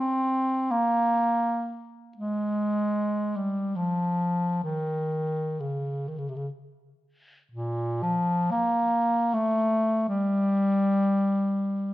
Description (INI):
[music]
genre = classical, free, expressive piece for unaccompanied bass clarinet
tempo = 48-85 BPM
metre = 3/4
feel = rubato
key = Bb dorian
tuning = A4 = 441 Hz
[part]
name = warm bass clarinet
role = solo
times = 0.0-11.9 s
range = Bb2 to C4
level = -24 LUFS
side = equal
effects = none
[sound]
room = moderate recital hall reverb, RT60 1.6 s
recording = none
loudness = -24 LUFS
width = side -16 dB against mid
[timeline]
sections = 0.0-7.5 A section; 7.5-11.9 B section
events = none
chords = none